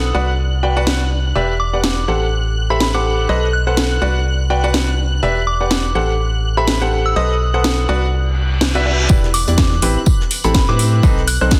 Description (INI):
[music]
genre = piano house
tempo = 124 BPM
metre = 4/4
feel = swing 57% on 16ths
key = E minor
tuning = A4 = 440 Hz
[part]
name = soft synth bell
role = melody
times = 0.0-11.5 s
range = B5 to F#6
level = -26 LUFS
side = equal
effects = chorus, dub echo
[part]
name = analog string pad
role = sustained chords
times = 0.0-11.6 s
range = F#6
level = -31 LUFS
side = equal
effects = ensemble chorus, sidechain pumping
[part]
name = bright baby grand piano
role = riff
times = 0.0-11.6 s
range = C4 to G5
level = -23 LUFS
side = equal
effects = sidechain pumping, dub echo
[part]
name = organ-like FM bass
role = bass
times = 0.0-11.6 s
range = E1 to A2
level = -20 LUFS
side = equal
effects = sidechain pumping
[part]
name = house drum kit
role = drums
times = 0.9-11.6 s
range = hi-hat, snare drum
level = -24 LUFS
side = equal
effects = soft clipping on snare
[part]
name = reverse cymbal and impact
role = sound effects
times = 8.3-11.0 s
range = none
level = -28 LUFS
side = equal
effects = none
[part]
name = damped 70s drum kit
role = drums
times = 9.1-11.6 s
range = hi-hat, snare drum, tambourine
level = -31 LUFS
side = equal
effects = sidechain pumping on hats, high-pass filter on hats, high-pass filter on snare, sidechain pumping on perc, high-pass filter on perc, high-pass filter on room
[part]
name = electronic kick drum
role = drums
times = 9.1-11.6 s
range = none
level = -16 LUFS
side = equal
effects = none
[sound]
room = moderate plate reverb, RT60 1.7 s, small room ambience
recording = dense, heavily limited modern master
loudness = -16 LUFS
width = mono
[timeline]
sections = 0.0-9.1 A section; 9.1-11.6 B section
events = reverse cymbal 8.3-9.1; drop 9.1-11.6; impact 9.1-11.0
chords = 0.1 Csus2; 1.4 Em7; 2.1 Am7; 3.3 B7b9; 4.0 Csus2; 5.2 Em7; 6.0 Am7; 7.2 B7b9; 7.9 Cmaj9#11; 9.1 Em7; 9.8 Am7; 11.0 B7b9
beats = 0.39 0.87 | 1.35 1.84 2.32 2.81 | 3.29 3.77 4.26 4.74 | 5.23 5.71 6.19 6.68 | 7.16 7.65 8.13 8.61 | 9.10 9.58 10.06 10.55 | 11.03 11.52